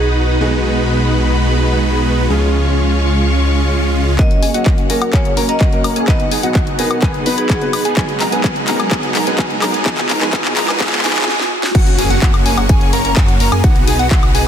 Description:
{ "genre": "EDM, festival progressive house", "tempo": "127 BPM", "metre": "4/4", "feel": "straight", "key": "F# major", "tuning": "A4 = 441 Hz", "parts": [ { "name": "vibraphone with medium hard mallets", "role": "melody", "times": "0.0-0.1, 4.2-7.9 s", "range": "G#4 to D#5", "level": "-23 LUFS", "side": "equal", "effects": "ping-pong delay" }, { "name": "warm baby grand piano", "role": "accompaniment", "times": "0.0-11.2 s", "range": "B2 to D#5", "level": "-24 LUFS", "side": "equal", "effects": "sidechain pumping, ping-pong delay" }, { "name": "bright symphonic string section", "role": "sustained chords", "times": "0.0-14.5 s", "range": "B2 to D#6", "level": "-26 LUFS", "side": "left 1 dB", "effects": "sidechain pumping" }, { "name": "supersaw chords", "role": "riff", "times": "0.0-14.4 s", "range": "E#3 to B4", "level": "-19 LUFS", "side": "right 1 dB", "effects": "sidechain pumping, low-pass filter, ping-pong delay" }, { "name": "wide detuned saw bass", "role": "bass", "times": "0.0-4.2, 11.7-14.4 s", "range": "F#1 to F#2", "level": "-16 LUFS", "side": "equal", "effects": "chorus, sidechain pumping" }, { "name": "plucky unison lead", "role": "arpeggios", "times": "4.2-14.4 s", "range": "F#5 to B5", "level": "-22 LUFS", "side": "equal", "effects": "sidechain pumping, ping-pong delay" }, { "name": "electronic kick drum", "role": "drums", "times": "4.2-14.2 s", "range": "none", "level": "-14 LUFS", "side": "equal", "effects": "overdrive" }, { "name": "house drum kit", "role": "drums", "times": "4.2-14.4 s", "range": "crash cymbal, handclaps, hi-hat, snare drum, woodblock", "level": "-20 LUFS", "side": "left 2 dB", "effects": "overdrive" }, { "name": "riser, noise sweep and impact", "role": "sound effects", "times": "8.2-13.6 s", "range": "none", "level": "-27 LUFS", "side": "left 1 dB", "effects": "none" } ], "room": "light reverb", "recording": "dense, heavily limited modern master, high-pass filter", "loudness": "-12 LUFS", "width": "side -9 dB against mid", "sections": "0.0-4.2 A section; 4.2-11.7 B section; 11.7-14.5 C section", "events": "build-up 4.2-11.7; drum fill 4.2-11.3, 11.3-11.7; filter sweep on supersaw synth 4.2-11.7; filter sweep on digital synth lead 4.2-11.7; filter sweep 4.2-11.7; noise sweep 10.0-11.7; drop 11.7-14.5; impact 11.7-13.6", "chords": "0.4 G#m7/B; 2.3 C#; 4.2 F#; 6.1 B; 8.0 G#m7; 9.9 C#; 11.7 F#; 13.6 B" }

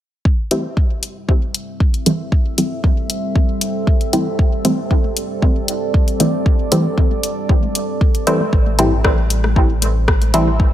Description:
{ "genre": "dub techno", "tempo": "116 BPM", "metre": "4/4", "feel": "straight", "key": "A minor", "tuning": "A4 = 440 Hz", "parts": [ { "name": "deep dark ambient pad", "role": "sustained chords", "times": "1.2-10.7 s", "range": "G3 to E5", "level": "-24 LUFS", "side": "right 2 dB", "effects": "chorus, built-in reverb, sidechain pumping" }, { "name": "electronic kick drum", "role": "drums", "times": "0.3-10.7 s", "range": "none", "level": "-15 LUFS", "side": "equal", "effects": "none" }, { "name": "filtered dub chord stab", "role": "stabs", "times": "0.5-10.5 s", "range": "E3 to C4", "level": "-19 LUFS", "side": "equal", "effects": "chorus, phaser, sidechain pumping, dub echo" }, { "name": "punchy analog drum machine", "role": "drums", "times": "0.5-10.4 s", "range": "hi-hat, rim click", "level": "-21 LUFS", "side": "left 2 dB", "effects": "overdrive" }, { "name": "electronic congas and toms", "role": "percussion", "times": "4.6-10.7 s", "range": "none", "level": "-30 LUFS", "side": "left 3 dB", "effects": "none" }, { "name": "warm sub bass", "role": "bass", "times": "8.5-10.7 s", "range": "A1", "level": "-18 LUFS", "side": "equal", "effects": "tube saturation, sidechain pumping" } ], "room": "light reverb", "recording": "echo-heavy mix", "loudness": "-14 LUFS", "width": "side -12 dB against mid", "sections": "0.3-8.5 A section; 8.5-10.7 B section", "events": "filter sweep on synth stab 0.3-8.5", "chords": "0.3 Am7" }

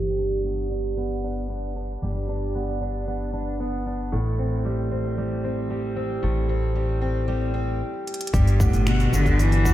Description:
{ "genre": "folktronica", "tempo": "114 BPM", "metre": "4/4", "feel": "straight", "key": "G major", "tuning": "A4 = 438 Hz", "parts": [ { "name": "fingerpicked twelve-string acoustic guitar", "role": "arpeggios", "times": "0.0-9.7 s", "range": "A2 to G4", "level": "-27 LUFS", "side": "right 1 dB", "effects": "low-pass filter, tape echo" }, { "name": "upright bass", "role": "bass", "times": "0.0-9.7 s", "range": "G1 to A1", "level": "-25 LUFS", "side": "equal", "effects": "tube saturation" }, { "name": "organic electronic drum kit", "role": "drums", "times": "8.1-9.7 s", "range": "cabasa, finger snaps, hi-hat", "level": "-33 LUFS", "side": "equal", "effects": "none" }, { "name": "clear cello", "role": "melody", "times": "8.3-9.7 s", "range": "G2 to E3", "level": "-22 LUFS", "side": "left 1 dB", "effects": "none" }, { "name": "electronic kick drum", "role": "drums", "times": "8.3-9.7 s", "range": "none", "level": "-23 LUFS", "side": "equal", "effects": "none" } ], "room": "moderate lush hall reverb, RT60 2.4 s", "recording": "dreamy mix soaked in reverb, low-pass filter", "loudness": "-22 LUFS", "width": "side -13 dB against mid", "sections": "0.0-8.3 A section; 8.3-9.7 B section", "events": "filter sweep on twelve-string acoustic guitar 0.0-8.3; filter sweep 0.0-8.3; break 7.8-8.3; drum fill 8.1", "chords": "0.0 G; 4.1 Am7; 8.3 Gmaj7" }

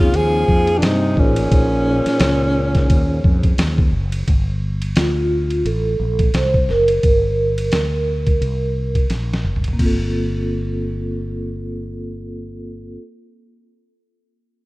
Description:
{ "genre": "hip hop, jazz-hop", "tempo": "87 BPM", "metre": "4/4", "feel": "swing 57% on 16ths", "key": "G minor", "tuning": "A4 = 440 Hz", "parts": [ { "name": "breathy alto saxophone", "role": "melody", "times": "0.0-3.6 s", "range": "Db4 to Ab4", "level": "-19 LUFS", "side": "equal", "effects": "slapback echo" }, { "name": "breathy tenor saxophone", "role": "second line", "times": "0.0-3.6 s", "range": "Bb2 to F3", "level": "-24 LUFS", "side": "left 1 dB", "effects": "none" }, { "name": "vibraphone with soft mallets", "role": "accompaniment", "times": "0.0-13.0 s", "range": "Bb3 to C5", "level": "-22 LUFS", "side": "right 1 dB", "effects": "none" }, { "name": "mellow fretless electric bass", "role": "bass", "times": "0.0-13.0 s", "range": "F#1 to G2", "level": "-21 LUFS", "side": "equal", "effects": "none" }, { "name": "boom bap sampler-style drum kit", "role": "drums", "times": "0.1-10.0 s", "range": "crash cymbal, hi-hat, kick drum, ride cymbal, snare drum, toms", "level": "-18 LUFS", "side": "equal", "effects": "vintage 12-bit sampler grit" } ], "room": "light reverb, studio reverb", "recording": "rough home demo mix", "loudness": "-15 LUFS", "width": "side -20 dB against mid", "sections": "0.0-4.3 A section; 4.3-9.8 B section; 9.8-12.6 C section", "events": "vibraphone solo 4.3-9.8; drum fill 9.1-9.8", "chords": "0.0 Bbm11; 4.3 Gmadd9; 9.8 Gm11" }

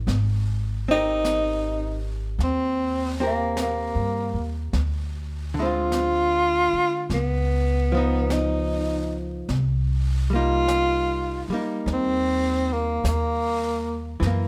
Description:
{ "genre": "jazz", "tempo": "51 BPM", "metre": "4/4", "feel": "swing 69% on 8ths", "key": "unclear", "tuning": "A4 = 441 Hz", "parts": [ { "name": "archtop guitar, miked and amplified", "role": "accompaniment", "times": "0.0-14.5 s", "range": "D3 to Bb4", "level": "-31 LUFS", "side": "equal", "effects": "none" }, { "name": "upright bass", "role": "bass", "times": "0.0-14.5 s", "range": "Ab1 to G2", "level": "-28 LUFS", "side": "equal", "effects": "none" }, { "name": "jazz brush drum kit", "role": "drums", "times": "0.1-14.5 s", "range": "brushed snare drum, hi-hat, snare drum", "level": "-39 LUFS", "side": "equal", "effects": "none" }, { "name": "breathy tenor saxophone", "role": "melody", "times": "0.9-14.0 s", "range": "Bb3 to F4", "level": "-26 LUFS", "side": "equal", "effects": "none" } ], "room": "light reverb", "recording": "none", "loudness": "-24 LUFS", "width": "mono", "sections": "0.0-14.5 A section", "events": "none", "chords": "0.1 Abmaj9; 4.7 Dm7b5; 7.1 Db9; 9.5 Cm7" }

